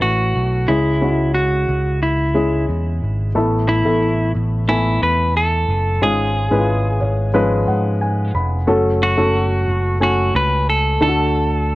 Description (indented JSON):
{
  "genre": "pop",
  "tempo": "90 BPM",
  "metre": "4/4",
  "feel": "straight",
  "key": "unclear",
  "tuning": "A4 = 440 Hz",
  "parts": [
    { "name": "clean electric guitar", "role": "melody", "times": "0.0-11.8 s", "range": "E4 to B4", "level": "-19 LUFS", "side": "equal", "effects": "none" },
    { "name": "dark upright piano", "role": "accompaniment", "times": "0.0-11.8 s", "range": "G#2 to B5", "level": "-20 LUFS", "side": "left 1 dB", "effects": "none" },
    { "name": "picked electric bass", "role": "bass", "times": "0.0-11.8 s", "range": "E#1 to G#2", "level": "-19 LUFS", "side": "equal", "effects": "none" }
  ],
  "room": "light reverb",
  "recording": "worn, warbling old tape, cassette tape, warbly pitch drift",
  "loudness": "-15 LUFS",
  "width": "side -18 dB against mid",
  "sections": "0.0-3.4 A section; 3.4-11.8 B section",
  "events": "upright piano fill 6.7-8.7",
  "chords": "0.0 A; 0.7 C#m; 3.4 Asus2; 6.0 C#/G#; 8.7 F#m; 11.0 D"
}